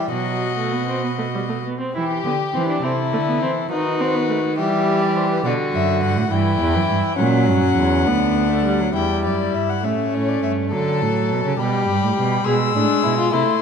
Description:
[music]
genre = classical, baroque-style fugue for string quartet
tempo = 68 BPM (dotted quarters)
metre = 6/8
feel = straight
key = E minor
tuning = A4 = 439 Hz
[part]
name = warm violin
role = melody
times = 0.0-13.6 s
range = G4 to E6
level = -25 LUFS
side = left 12 dB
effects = none
[part]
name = warm violin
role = second line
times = 0.0-13.6 s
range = C#4 to A4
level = -23 LUFS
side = left 4 dB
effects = none
[part]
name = warm viola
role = accompaniment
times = 0.0-13.6 s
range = D3 to E4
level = -23 LUFS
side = right 2 dB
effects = none
[part]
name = warm cello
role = bass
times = 0.0-13.4 s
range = D2 to E3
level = -22 LUFS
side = right 4 dB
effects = none
[sound]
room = moderate recital hall reverb, RT60 1.6 s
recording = dark, warm production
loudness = -17 LUFS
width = side -6 dB against mid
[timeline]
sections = 0.0-2.0 A section; 2.0-9.0 B section; 9.0-13.6 A section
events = none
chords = 0.1 B; 2.0 Em; 2.8 Am/C; 3.7 B/D#; 4.6 Em; 5.4 Bm (rootless); 6.3 Em; 7.2 F#; 8.1 Bm/D; 9.0 Em7; 9.8 A; 10.7 Dmaj7; 11.6 G; 12.5 E7

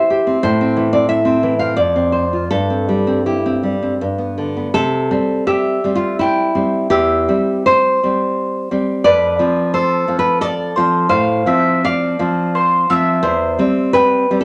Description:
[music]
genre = romantic duo for mandolin and classical guitar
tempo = 75-91 BPM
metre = 3/4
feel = rubato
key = C major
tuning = A4 = 439 Hz
[part]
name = nylon-string guitar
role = accompaniment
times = 0.0-14.4 s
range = E2 to F5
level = -17 LUFS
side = equal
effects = none
[part]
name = mandolin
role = melody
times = 5.5-14.4 s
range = A4 to G5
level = -22 LUFS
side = equal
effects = none
[sound]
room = moderate club reverb, RT60 0.6 s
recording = none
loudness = -16 LUFS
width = mono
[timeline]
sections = 0.0-4.7 A section; 4.7-14.4 B section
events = none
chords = 0.4 Am; 1.8 Dm7/F; 2.5 C/G; 4.0 G; 4.7 C; 6.9 C/E; 9.1 F; 11.1 F/A; 13.2 C/E

